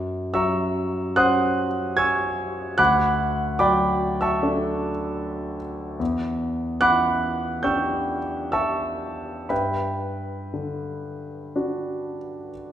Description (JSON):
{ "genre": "classical, impressionist solo piano", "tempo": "58-78 BPM", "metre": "4/4", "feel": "rubato", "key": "D major", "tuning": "A4 = 440 Hz", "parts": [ { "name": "warm concert grand piano", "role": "solo", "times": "0.0-12.7 s", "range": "D2 to G#6", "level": "-22 LUFS", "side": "equal", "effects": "none" } ], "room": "wet recital hall reverb, RT60 1.6 s", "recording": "heard from further back in the room", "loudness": "-21 LUFS", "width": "side -10 dB against mid", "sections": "0.0-12.7 A section", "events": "none", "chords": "0.0 F#7#11; 2.8 D6; 6.0 Em7; 9.5 Gmaj7" }